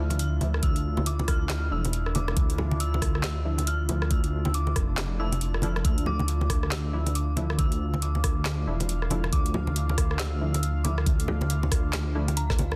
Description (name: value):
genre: deep dubstep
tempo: 138 BPM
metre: 4/4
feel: swing 61% on 16ths, half-time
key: D minor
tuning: A4 = 438 Hz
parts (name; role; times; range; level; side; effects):
- dark detuned synth bell; melody; 0.0-12.8 s; Bb5 to F6; -39 LUFS; equal; chorus, phaser, dub echo
- deep dark ambient pad; sustained chords; 0.0-12.8 s; D4 to F5; -41 LUFS; equal; chorus, built-in reverb
- filtered dub chord stab; stabs; 0.0-12.3 s; F3 to E4; -40 LUFS; equal; chorus, dub echo
- dark detuned saw bass; bass; 0.0-12.8 s; E1 to D2; -29 LUFS; equal; none
- garage drum kit; drums; 0.1-12.8 s; handclaps, hi-hat, rim click, snare drum; -35 LUFS; equal; soft clipping on snare
- congas; percussion; 0.1-12.8 s; none; -35 LUFS; equal; none
- electronic kick drum; drums; 0.6-12.6 s; none; -28 LUFS; equal; none
room: light reverb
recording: dense, heavily limited modern master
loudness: -26 LUFS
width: mono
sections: 0.0-12.8 A section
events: none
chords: 0.0 Dmadd9